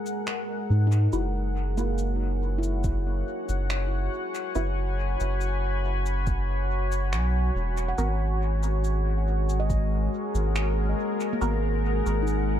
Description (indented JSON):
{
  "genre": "ambient dub",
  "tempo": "70 BPM",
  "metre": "4/4",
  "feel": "straight",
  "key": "unclear",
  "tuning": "A4 = 440 Hz",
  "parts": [
    { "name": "deep dark ambient pad", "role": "sustained chords", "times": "0.0-12.6 s", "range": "G#3 to B5", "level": "-30 LUFS", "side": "left 1 dB", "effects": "chorus, built-in reverb" },
    { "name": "handpan", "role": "arpeggios", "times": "0.0-12.6 s", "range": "A#3 to F#5", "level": "-36 LUFS", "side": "right 2 dB", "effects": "dub echo" },
    { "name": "electronic cabasa and finger snaps", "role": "drums", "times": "0.1-12.4 s", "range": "none", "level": "-37 LUFS", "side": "equal", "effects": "dub echo" },
    { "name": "soft dub sub bass", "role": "bass", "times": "0.7-12.6 s", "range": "E1 to G#2", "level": "-25 LUFS", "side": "equal", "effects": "none" },
    { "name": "filtered dub chord stab", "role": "stabs", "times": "1.1-11.7 s", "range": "B3 to B4", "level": "-35 LUFS", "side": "equal", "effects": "phaser, lush chorus, dub echo" },
    { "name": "electronic kick drum", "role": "drums", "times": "2.8-9.9 s", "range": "none", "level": "-29 LUFS", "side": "equal", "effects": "none" }
  ],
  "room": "digital ambience",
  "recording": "echo-heavy mix",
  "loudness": "-24 LUFS",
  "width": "side -10 dB against mid",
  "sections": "0.0-12.6 A section",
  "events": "none",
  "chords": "0.0 G#7sus2; 1.1 F#7sus4; 8.0 G#m9"
}